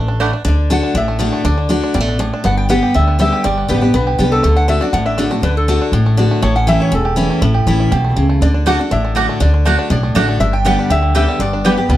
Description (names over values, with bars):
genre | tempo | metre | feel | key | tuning
bluegrass | 241 BPM | 4/4 | straight | D major | A4 = 441 Hz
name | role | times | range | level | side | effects
bluegrass banjo | melody | 0.0-12.0 s | G3 to G4 | -22 LUFS | right 4 dB | none
upright bass | bass | 0.0-12.0 s | E1 to D2 | -16 LUFS | equal | none
mandolin | stabs | 0.2-0.3, 8.7-11.7 s | A3 to G5 | -19 LUFS | right 5 dB | none
picked steel-string acoustic guitar | accompaniment | 0.4-12.0 s | E2 to G4 | -16 LUFS | left 1 dB | none
lap resonator guitar | melody | 0.5-12.0 s | A4 to G5 | -20 LUFS | left 2 dB | none
room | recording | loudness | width
light reverb | none | -12 LUFS | side -14 dB against mid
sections
0.5-12.0 A section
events
none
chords
0.5 D; 2.4 G; 4.4 D; 6.4 A; 8.4 D; 10.4 G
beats
0.21 | 0.45 0.70 0.95 1.20 | 1.45 1.70 1.95 2.19 | 2.44 2.69 2.94 3.19 | 3.44 3.69 3.94 4.18 | 4.43 4.68 4.93 5.18 | 5.43 5.68 5.93 6.17 | 6.42 6.67 6.92 7.17 | 7.42 7.67 7.92 8.16 | 8.41 8.66 8.91 9.16 | 9.41 9.66 9.90 10.15 | 10.40 10.65 10.90 11.15 | 11.40 11.64 11.89